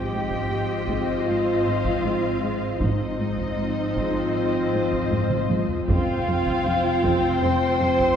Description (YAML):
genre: cinematic, suspense film score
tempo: 78 BPM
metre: 4/4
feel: straight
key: unclear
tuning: A4 = 438 Hz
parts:
  - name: muted chamber violin section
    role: melody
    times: 0.0-8.2 s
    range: Eb5 to C6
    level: -34 LUFS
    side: left 4 dB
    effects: none
  - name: muted chamber violin section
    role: second line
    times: 0.0-8.2 s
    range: C5 to G5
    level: -28 LUFS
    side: left 5 dB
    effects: none
  - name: muted symphonic viola section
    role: accompaniment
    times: 0.0-8.2 s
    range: C4 to F4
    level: -28 LUFS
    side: right 1 dB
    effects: none
  - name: glass harmonica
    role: sustained chords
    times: 0.0-8.2 s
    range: F4 to G5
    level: -34 LUFS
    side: equal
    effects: none
  - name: warm French horn section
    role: sustained chords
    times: 0.0-8.2 s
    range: F3 to C4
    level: -31 LUFS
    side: left 2 dB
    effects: none
  - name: muted chamber cello section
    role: bass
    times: 0.0-8.2 s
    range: Eb4 to C5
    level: -28 LUFS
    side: right 2 dB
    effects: none
  - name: muted chamber double bass section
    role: bass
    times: 0.0-8.2 s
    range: F1 to Ab1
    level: -32 LUFS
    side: right 3 dB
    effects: none
  - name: muted chamber cello section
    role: riff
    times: 0.1-8.0 s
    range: F2 to Ab3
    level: -28 LUFS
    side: equal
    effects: none
  - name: taiko ensemble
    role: drums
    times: 0.3-8.2 s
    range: none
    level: -30 LUFS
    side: right 1 dB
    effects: none
room: wet scoring stage reverb, RT60 1.5 s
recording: heard from further back in the room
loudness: -21 LUFS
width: side -8 dB against mid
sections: 0.0-8.2 A section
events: drum fill 5.1-5.9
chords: 0.0 Ab6; 5.9 Fsus2